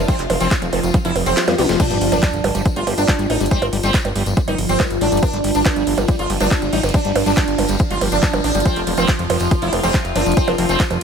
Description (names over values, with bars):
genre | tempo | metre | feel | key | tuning
psychedelic trance | 140 BPM | 4/4 | straight | unclear | A4 = 441 Hz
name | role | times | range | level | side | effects
evolving wavetable pad | sustained chords | 0.0-11.0 s | F3 to F4 | -24 LUFS | left 2 dB | phaser, built-in reverb, vintage 12-bit sampler grit, sidechain pumping
overdriven acid bass | riff | 0.0-11.0 s | F3 to F4 | -26 LUFS | moving between left 8 dB and right 6 dB | auto-pan, sidechain pumping, digital delay
fat analog bass | bass | 0.0-11.0 s | F1 to F2 | -22 LUFS | equal | none
clear studio string section | texture | 0.0-1.8 s | C4 to F5 | -31 LUFS | equal | none
sitar | melody | 0.1-10.8 s | B3 to F4 | -21 LUFS | right 3 dB | phaser, sidechain pumping, digital delay
electronic kick drum | drums | 0.1-10.9 s | none | -17 LUFS | equal | none
techno drum kit | drums | 0.1-11.0 s | crash cymbal, handclaps, hi-hat, percussion blips, ride cymbal, snare drum, toms | -23 LUFS | right 3 dB | none
tambourine | percussion | 0.1-11.0 s | none | -34 LUFS | left 6 dB | none
swell and sub drop | sound effects | 1.1-3.5 s | none | -30 LUFS | right 1 dB | none
metallic wobble bass | second line | 9.9-10.8 s | C4 | -33 LUFS | right 2 dB | none
room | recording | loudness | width
light reverb, digital ambience | none | -15 LUFS | side -6 dB against mid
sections
0.0-1.8 A section; 1.8-11.0 B section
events
kick drops out 1.4-1.8; drum fill 1.4-1.8; band accent 1.7; drop 1.8-11.0; impact 1.8-3.5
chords
0.0 F5; 1.8 G7(no3); 8.7 F5